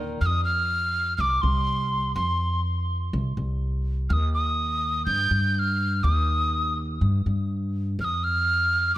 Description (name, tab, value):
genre	indie folk with a building arrangement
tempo	124 BPM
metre	4/4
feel	straight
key	unclear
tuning	A4 = 441 Hz
part	upright bass	bass	0.0-8.9 s	C2 to G2	-25 LUFS	equal	none
part	breathy mellow tin whistle	melody	0.2-9.0 s	C6 to G6	-25 LUFS	equal	digital delay
room	light reverb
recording	none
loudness	-22 LUFS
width	side -15 dB against mid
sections	0.2-9.0 A section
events	none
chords	0.2 F5; 4.1 Eb; 8.0 F5